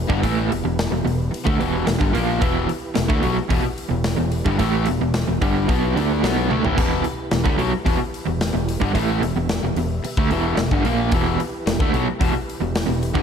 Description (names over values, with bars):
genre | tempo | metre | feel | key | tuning
classic rock | 110 BPM | 4/4 | straight | E minor | A4 = 441 Hz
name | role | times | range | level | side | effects
mellow tonewheel organ | sustained chords | 0.0-13.2 s | B3 to E5 | -33 LUFS | right 1 dB | slow rotary speaker, chorus vibrato
overdriven semi-hollow guitar | riff | 0.0-13.2 s | E2 to D4 | -25 LUFS | left 11 dB | none
overdriven semi-hollow guitar | riff | 0.0-13.2 s | E2 to D4 | -23 LUFS | right 10 dB | tremolo
growling fingered electric bass | bass | 0.0-13.2 s | E1 to D2 | -25 LUFS | left 1 dB | overdrive
big rock drum kit | drums | 0.1-13.2 s | hi-hat, kick drum, snare drum, splash cymbal, toms | -24 LUFS | left 1 dB | none
room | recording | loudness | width
light reverb | none | -18 LUFS | side -7 dB against mid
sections
0.0-13.2 A section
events
drum fill 6.5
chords
0.0 Em